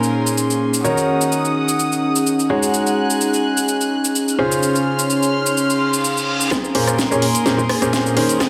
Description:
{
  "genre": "piano house",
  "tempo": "127 BPM",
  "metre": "4/4",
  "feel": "swing 54% on 16ths",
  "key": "Bb minor",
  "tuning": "A4 = 439 Hz",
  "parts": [
    { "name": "warm studio string section", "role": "sustained chords", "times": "0.0-8.5 s", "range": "Db4 to Gb6", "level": "-26 LUFS", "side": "equal", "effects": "sidechain pumping" },
    { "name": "clear baby grand piano", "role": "riff", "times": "0.0-8.4 s", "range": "Bb2 to Db5", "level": "-22 LUFS", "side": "equal", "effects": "sidechain pumping, low-pass filter, digital delay" },
    { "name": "house drum kit", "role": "drums", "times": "0.0-8.5 s", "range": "hi-hat, rim click, shaker, snare drum", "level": "-24 LUFS", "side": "equal", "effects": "overdrive" },
    { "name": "warbly tape-like pad", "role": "texture", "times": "0.0-8.5 s", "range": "Bb3 to Gb5", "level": "-23 LUFS", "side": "equal", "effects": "chorus, built-in reverb, sidechain pumping" },
    { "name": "reverse cymbal", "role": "sound effects", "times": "5.8-6.5 s", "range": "none", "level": "-28 LUFS", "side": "equal", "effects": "none" },
    { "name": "electronic kick drum", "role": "drums", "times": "6.5-8.5 s", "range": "none", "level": "-29 LUFS", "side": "equal", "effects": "overdrive, high-pass filter on kick, high-pass filter on room" }
  ],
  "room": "moderate lush hall reverb, RT60 2.6 s",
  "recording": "none",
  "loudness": "-18 LUFS",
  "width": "mono",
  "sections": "0.0-6.5 A section; 6.5-8.5 B section",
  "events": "reverse cymbal 5.8-6.5; build-up 6.5-8.5; drum fill 6.5-8.5",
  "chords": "0.0 Bbm9; 0.8 Ebm7; 2.5 Ab7sus4; 4.4 Dbmaj7; 6.5 Bbm9"
}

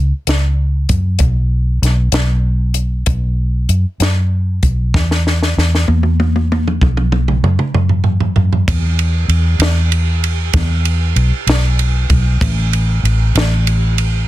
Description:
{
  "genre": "slow blues",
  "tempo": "64 BPM (dotted quarters)",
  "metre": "12/8",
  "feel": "straight",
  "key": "unclear",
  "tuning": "A4 = 440 Hz",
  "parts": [
    { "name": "vintage muted fingered electric bass", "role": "bass", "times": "0.0-14.2 s", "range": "A1 to F#2", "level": "-13 LUFS", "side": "equal", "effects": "none" },
    { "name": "compact cocktail drum kit", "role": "drums", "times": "0.3-14.1 s", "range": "hi-hat, kick drum, ride cymbal, snare drum, toms", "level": "-17 LUFS", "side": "right 1 dB", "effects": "soft clipping on snare" }
  ],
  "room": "little or no reverb",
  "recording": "dense, heavily limited modern master",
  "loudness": "-12 LUFS",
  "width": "side -15 dB against mid",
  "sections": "0.0-8.7 A section; 8.7-14.3 B section",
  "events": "drum fill 4.9-8.7",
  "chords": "none"
}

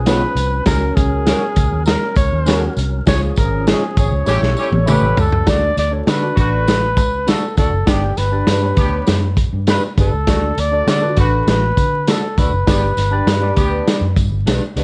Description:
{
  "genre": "uptempo 1960s-style soul",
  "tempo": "100 BPM",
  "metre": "4/4",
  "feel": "straight",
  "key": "D major from 5.5 s",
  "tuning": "A4 = 441 Hz",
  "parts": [
    { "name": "breathy trumpet", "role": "melody", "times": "0.0-14.2 s", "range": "G4 to D5", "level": "-23 LUFS", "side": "equal", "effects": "slapback echo" },
    { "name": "percussive tonewheel organ", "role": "sustained chords", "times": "0.0-5.5 s", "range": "F3 to Cb5", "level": "-32 LUFS", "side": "equal", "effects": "none" },
    { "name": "vintage muted fingered electric bass", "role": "bass", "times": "0.0-14.8 s", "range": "F#1 to D3", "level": "-21 LUFS", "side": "equal", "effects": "none" },
    { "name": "barky tine electric piano", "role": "accompaniment", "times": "0.1-14.1 s", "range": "Db4 to D5", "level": "-27 LUFS", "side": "equal", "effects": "overdrive, phaser" },
    { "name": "electric guitar through a small old amp", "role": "stabs", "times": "0.1-14.8 s", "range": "A3 to D5", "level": "-26 LUFS", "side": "equal", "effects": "none" },
    { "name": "vintage drum kit", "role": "drums", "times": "0.1-14.8 s", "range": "hi-hat, kick drum, snare drum, toms", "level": "-20 LUFS", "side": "equal", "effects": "none" },
    { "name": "tambourine", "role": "percussion", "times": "0.1-14.8 s", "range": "none", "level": "-36 LUFS", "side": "equal", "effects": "none" },
    { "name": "warm horn section", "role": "second line", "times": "4.0-14.0 s", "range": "A3 to Ab4", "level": "-29 LUFS", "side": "equal", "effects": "none" }
  ],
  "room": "little or no reverb",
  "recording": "vinyl crackle, nothing above 10.6 kHz",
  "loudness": "-16 LUFS",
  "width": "mono",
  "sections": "0.0-5.5 A section; 5.5-14.8 B section",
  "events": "band accent 3.1-5.5; drum fill 4.3-5.5",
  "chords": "0.0 Db7; 0.7 Gb/Db; 3.1 Db; 4.3 A7; 5.5 D; 7.9 G; 10.3 D; 12.7 G"
}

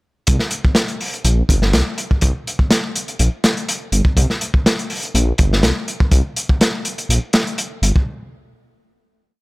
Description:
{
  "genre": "breakbeat, breaks",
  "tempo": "123 BPM",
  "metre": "4/4",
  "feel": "swing 54% on 16ths",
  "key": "unclear",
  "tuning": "A4 = 440 Hz",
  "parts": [
    { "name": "dark detuned saw bass", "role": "bass", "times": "0.3-7.9 s", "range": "G1 to C2", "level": "-16 LUFS", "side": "equal", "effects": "tube saturation" },
    { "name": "crunchy breakbeat drum kit", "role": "drums", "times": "0.3-8.1 s", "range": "hi-hat, kick drum, snare drum", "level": "-16 LUFS", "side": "equal", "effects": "none" }
  ],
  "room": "little or no reverb",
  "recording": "none",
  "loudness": "-15 LUFS",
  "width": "side -23 dB against mid",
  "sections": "0.3-8.1 groove",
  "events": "none",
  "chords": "none"
}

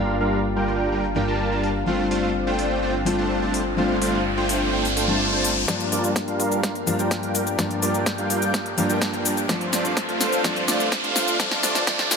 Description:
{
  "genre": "EDM, festival progressive house",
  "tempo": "126 BPM",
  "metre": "4/4",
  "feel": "straight",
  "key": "G minor",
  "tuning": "A4 = 441 Hz",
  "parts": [
    { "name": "fingerpicked steel-string acoustic guitar", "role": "accompaniment", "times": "0.0-12.2 s", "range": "G2 to A4", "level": "-27 LUFS", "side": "left 4 dB", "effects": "sidechain pumping, ping-pong delay" },
    { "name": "lush unison pad", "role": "sustained chords", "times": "0.0-12.2 s", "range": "G3 to G5", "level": "-29 LUFS", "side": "left 1 dB", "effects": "chorus, phaser, sidechain pumping" },
    { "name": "supersaw chords", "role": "riff", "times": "0.0-12.2 s", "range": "G3 to A5", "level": "-25 LUFS", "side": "right 2 dB", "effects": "sidechain pumping, low-pass filter, ping-pong delay" },
    { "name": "wide detuned saw bass", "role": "bass", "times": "0.0-12.2 s", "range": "G1 to G2", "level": "-33 LUFS", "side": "right 1 dB", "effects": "none" },
    { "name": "big-room dance drum kit", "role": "drums", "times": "0.2-12.2 s", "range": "hi-hat, shaker, snare drum", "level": "-26 LUFS", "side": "left 1 dB", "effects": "overdrive, low-pass filter on hats, low-pass filter on cymbals, low-pass filter on perc, low-pass filter on snare" },
    { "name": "riser", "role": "sound effects", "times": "3.4-12.2 s", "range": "none", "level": "-28 LUFS", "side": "equal", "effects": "none" },
    { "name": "electronic kick drum", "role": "drums", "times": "5.7-12.0 s", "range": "none", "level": "-25 LUFS", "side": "equal", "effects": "overdrive, high-pass filter on kick" }
  ],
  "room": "moderate lush hall reverb, RT60 1.8 s, digital ambience",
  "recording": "high-pass filter",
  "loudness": "-20 LUFS",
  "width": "side -5 dB against mid",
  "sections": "0.0-5.7 A section; 5.7-12.2 B section",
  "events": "filter sweep on drum 0.0-5.7; riser 3.4-5.7, 5.7-12.2; build-up 5.7-12.2; drum fill 5.7-12.2; filter sweep on supersaw synth 5.7-12.2; filter sweep 5.7-12.2",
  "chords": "0.0 Gm7; 1.9 Dm7/G; 5.7 Gm7; 9.5 Dm7/G"
}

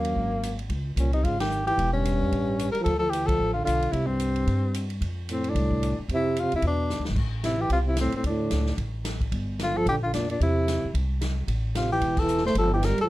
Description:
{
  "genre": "jazz, small-group swing and bop",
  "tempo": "223 BPM",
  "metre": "4/4",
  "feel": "swing 58% on 8ths",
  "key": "unclear",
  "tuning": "A4 = 439 Hz",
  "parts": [
    { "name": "breathy tenor saxophone", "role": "melody", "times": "0.0-13.1 s", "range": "Bb3 to C5", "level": "-27 LUFS", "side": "left 2 dB", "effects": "none" },
    { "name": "dark trombone", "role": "second line", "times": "0.0-13.1 s", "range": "Gb2 to A3", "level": "-29 LUFS", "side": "right 2 dB", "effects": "none" },
    { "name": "upright bass", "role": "bass", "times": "0.0-13.0 s", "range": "E1 to G2", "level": "-27 LUFS", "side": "equal", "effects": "none" },
    { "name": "swinging big-band drum kit", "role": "drums", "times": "0.0-13.0 s", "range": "crash cymbal, hi-hat, kick drum, ride cymbal, snare drum", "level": "-33 LUFS", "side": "equal", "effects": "none" }
  ],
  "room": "light reverb",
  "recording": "dark, warm production",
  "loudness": "-23 LUFS",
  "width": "side -17 dB against mid",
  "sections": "0.0-7.2 A section; 7.2-13.1 B section",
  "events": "band accent 1.4, 3.3, 12.2; drum fill 6.9",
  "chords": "0.2 Absus2; 0.7 Dbsus2; 1.8 Em; 2.3 A7; 2.9 Dm; 3.9 C5; 5.0 Fmaj7; 6.6 E7; 7.2 Am; 8.3 D5; 9.3 Gm7; 10.4 C; 11.5 A5; 12.6 Gm13"
}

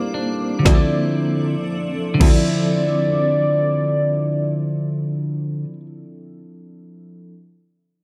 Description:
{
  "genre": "contemporary R&B",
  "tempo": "58 BPM",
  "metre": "4/4",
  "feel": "straight",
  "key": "D minor",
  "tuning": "A4 = 441 Hz",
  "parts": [
    { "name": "warm velvety synth lead", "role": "melody", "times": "0.0-5.4 s", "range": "D5", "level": "-24 LUFS", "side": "equal", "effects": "chorus, digital delay" },
    { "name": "muted felt-like synth keys", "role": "accompaniment", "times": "0.0-7.3 s", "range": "F3 to A4", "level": "-28 LUFS", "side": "equal", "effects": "chorus" },
    { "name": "granular cloud pad", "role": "sustained chords", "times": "0.0-3.8 s", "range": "F3 to D6", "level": "-32 LUFS", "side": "equal", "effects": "built-in reverb" },
    { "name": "clean electric guitar", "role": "arpeggios", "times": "0.0-5.9 s", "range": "D3 to G4", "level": "-24 LUFS", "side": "equal", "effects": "digital delay" },
    { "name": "downlifter", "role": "sound effects", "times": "0.0-0.7 s", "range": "none", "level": "-52 LUFS", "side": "equal", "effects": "none" },
    { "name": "warm cello", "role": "bass", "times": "0.7-2.3 s", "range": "D2", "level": "-22 LUFS", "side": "equal", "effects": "none" },
    { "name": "smooth R&B drum kit", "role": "drums", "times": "0.7-2.5 s", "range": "crash cymbal, kick drum, snare drum", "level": "-19 LUFS", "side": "equal", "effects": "none" }
  ],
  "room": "light reverb",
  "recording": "none",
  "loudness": "-19 LUFS",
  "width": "mono",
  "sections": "0.7-4.8 A section",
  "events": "break 0.0-0.7",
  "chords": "0.0 C9; 0.7 Dm9"
}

